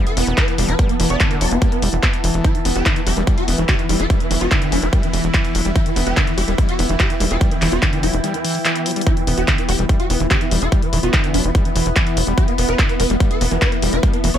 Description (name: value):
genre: psychedelic trance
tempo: 145 BPM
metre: 4/4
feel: straight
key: E minor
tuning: A4 = 441 Hz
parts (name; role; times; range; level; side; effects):
- swarming drone; sustained chords; 0.0-14.4 s; E3 to E4; -27 LUFS; left 1 dB; built-in reverb, sidechain pumping
- overdriven acid bass; riff; 0.0-14.4 s; D3 to F#4; -25 LUFS; moving between left 4 dB and right 4 dB; distortion, auto-pan, sidechain pumping, digital delay
- deep dark ambient pad; texture; 0.0-14.4 s; B3 to B5; -26 LUFS; equal; chorus, built-in reverb, sidechain pumping
- swarming rave lead; melody; 0.1-14.4 s; E3 to D5; -24 LUFS; equal; chorus, phaser, sidechain pumping, tape echo
- big-room dance drum kit; drums; 0.1-14.4 s; handclaps, hi-hat; -22 LUFS; left 1 dB; none
- tight sequencer bass; bass; 0.2-14.4 s; E1; -20 LUFS; equal; none
- electronic kick drum; drums; 0.4-14.1 s; none; -17 LUFS; equal; none
room: little or no reverb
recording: none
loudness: -15 LUFS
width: side -10 dB against mid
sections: 0.0-14.4 A section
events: break 8.2-9.1; drum fill 8.9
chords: 0.0 E5